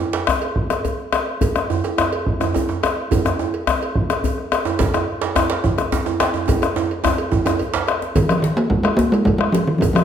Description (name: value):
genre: west african traditional, West African drum ensemble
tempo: 142 BPM (dotted quarters)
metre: 12/8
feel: straight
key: unclear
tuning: A4 = 440 Hz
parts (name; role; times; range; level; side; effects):
- cowbell; percussion; 0.1-10.0 s; none; -27 LUFS; right 5 dB; none
- djembe; percussion; 0.1-10.0 s; none; -26 LUFS; left 4 dB; none
- djembe; percussion; 0.1-7.9 s; none; -22 LUFS; right 6 dB; none
- bombo; percussion; 0.3-10.0 s; none; -21 LUFS; left 2 dB; none
- talking drum; melody; 8.2-10.0 s; Eb3 to Bb3; -16 LUFS; equal; none
room: wet recital hall reverb, RT60 1.3 s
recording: minimal, uncompressed stereo recording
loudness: -17 LUFS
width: side -8 dB against mid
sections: 0.0-8.2 A section; 8.2-10.0 B section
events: speeding up 0.0-10.0; drum fill 6.5-8.2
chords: none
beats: 0.13 0.56 0.99 | 1.41 1.84 2.26 2.69 | 3.11 3.54 3.96 4.38 | 4.80 5.22 5.64 6.07 | 6.49 6.90 7.32 7.74 | 8.16 8.58 8.99 9.41 | 9.82